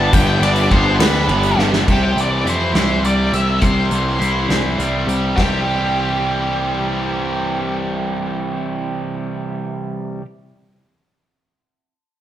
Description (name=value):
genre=indie rock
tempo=68 BPM (dotted quarters)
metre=6/8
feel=straight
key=C major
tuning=A4 = 440 Hz
part: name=octave-fuzz lead guitar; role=melody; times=0.0-9.6 s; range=G4 to A5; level=-22 LUFS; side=left 1 dB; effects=distortion
part: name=chorused pulse-width pad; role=sustained chords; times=0.0-1.8 s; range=G4 to B5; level=-29 LUFS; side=left 2 dB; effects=none
part: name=distorted electric guitar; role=riff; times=0.0-10.3 s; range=G2 to G4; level=-21 LUFS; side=right 1 dB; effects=overdrive
part: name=fuzz picked electric bass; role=bass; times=0.0-10.2 s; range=G1 to F2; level=-20 LUFS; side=equal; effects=overdrive
part: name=loose indie drum kit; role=drums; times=0.1-5.5 s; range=china cymbal, crash cymbal, hi-hat, kick drum, ride cymbal, snare drum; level=-19 LUFS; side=equal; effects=none
part: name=tambourine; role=percussion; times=0.1-1.6 s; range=none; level=-36 LUFS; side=right 6 dB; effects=none
room=light reverb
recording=band playing live in one room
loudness=-15 LUFS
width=side -11 dB against mid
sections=0.0-1.9 A section; 1.9-5.4 B section; 5.4-8.9 C section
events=drum fill 1.6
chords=0.0 G; 1.9 C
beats=| 0.12 0.99 | 1.87 2.74 | 3.62 4.50 | 5.37 6.25 | 7.13 8.01